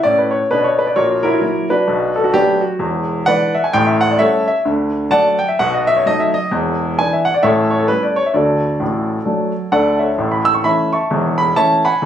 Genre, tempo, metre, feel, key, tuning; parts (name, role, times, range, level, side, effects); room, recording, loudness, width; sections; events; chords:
jazz, stride piano; 130 BPM; 4/4; swing 60% on 8ths; D major; A4 = 439 Hz
warm baby grand piano; solo; 0.0-12.1 s; E1 to E6; -13 LUFS; equal
moderate small room reverb, RT60 0.5 s; recorded on a phone in the room, studio reverb; -13 LUFS; side -10 dB against mid
0.0-10.2 A section; 10.2-12.1 B section
0.0 Bm7; 1.0 F#7/A#; 1.9 Bm7; 2.8 E7; 3.7 A7; 4.7 D; 5.6 B7; 6.5 E5; 7.4 A7; 8.3 D; 10.2 A